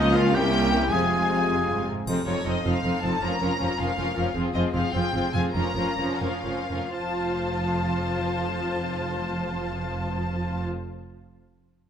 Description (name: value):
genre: classical, dramatic, fast romantic movement for symphony orchestra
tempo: 78-108 BPM (dotted quarters)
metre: 6/8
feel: straight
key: F minor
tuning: A4 = 443 Hz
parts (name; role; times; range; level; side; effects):
- clear symphonic violin section; melody; 0.0-10.7 s; Db5 to Bb5; -30 LUFS; left 4 dB; none
- warm oboe; second line; 0.0-1.9 s; Eb4 to Ab4; -28 LUFS; right 1 dB; none
- warm symphonic violin section; second line; 0.0-10.7 s; C4 to C5; -33 LUFS; left 4 dB; none
- rich symphonic viola section; accompaniment; 0.0-10.7 s; C3 to F4; -29 LUFS; equal; none
- warm French horn section; sustained chords; 0.0-1.8 s; Ab3 to F4; -28 LUFS; left 3 dB; none
- rich symphonic cello section; bass; 0.0-10.7 s; C2 to Ab2; -30 LUFS; right 3 dB; none
- rich symphonic double bass section; bass; 0.0-10.7 s; F1 to Db2; -32 LUFS; right 3 dB; none
- triangle; percussion; 2.1-2.8 s; none; -41 LUFS; left 1 dB; none
room: moderate scoring stage reverb, RT60 1.7 s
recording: close, detailed microphones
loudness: -23 LUFS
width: side -8 dB against mid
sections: 0.0-2.1 A section; 2.1-7.0 B section; 7.0-9.9 C section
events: slowing down 3.8-7.0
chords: 0.3 C7b9; 0.9 Fm; 2.1 F7; 3.2 Bbm/F; 4.4 Fm; 5.5 Bbm/F; 7.0 F